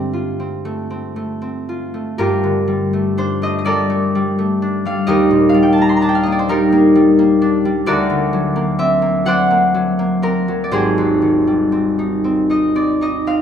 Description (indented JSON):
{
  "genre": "classical, solo harp piece",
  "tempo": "42 BPM (dotted quarters)",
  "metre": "6/8",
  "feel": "uneven beats, rubato",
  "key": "G minor",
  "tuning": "A4 = 439 Hz",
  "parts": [
    { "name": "concert harp", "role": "solo", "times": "0.0-13.4 s", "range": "Ab1 to C6", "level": "-14 LUFS", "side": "equal", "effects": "none" }
  ],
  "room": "moderate concert hall reverb, RT60 1.7 s",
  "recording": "minimal, uncompressed stereo recording",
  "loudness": "-13 LUFS",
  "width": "side -8 dB against mid",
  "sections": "0.0-2.2 A section; 2.2-13.4 A section",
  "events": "none",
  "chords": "0.0 G9sus4; 2.2 Gm9; 5.1 Ebmaj7; 7.9 Daug7; 10.7 Abmaj7"
}